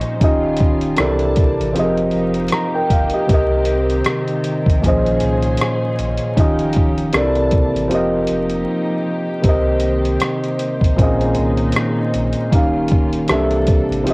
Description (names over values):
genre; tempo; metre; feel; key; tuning
lo-fi hip hop; 78 BPM; 4/4; swing 57% on 16ths; unclear; A4 = 439 Hz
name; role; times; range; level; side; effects
felt-muted upright piano; accompaniment; 0.0-14.1 s; Bb2 to Bb5; -17 LUFS; equal; cassette tape, low-pass filter
dark studio string section; sustained chords; 0.0-14.1 s; Eb3 to A5; -26 LUFS; left 1 dB; low-pass filter
warm sub bass; bass; 0.0-14.1 s; Eb1 to C2; -23 LUFS; equal; none
dusty soul sampler-style drum kit; drums; 0.0-14.1 s; hi-hat, kick drum, rim click; -18 LUFS; equal; cassette tape
room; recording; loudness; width
light reverb; home recording on cassette, vinyl crackle; -14 LUFS; side -27 dB against mid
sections
0.0-14.1 A section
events
break 8.7-9.4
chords
0.2 Eb9; 1.0 C13; 1.8 F9sus4; 3.3 Cm7; 4.8 Bbm11; 6.4 Eb9; 7.1 C13; 7.9 F9sus4; 9.4 Cm7; 11.0 Bbm11; 12.5 Eb9; 13.3 C13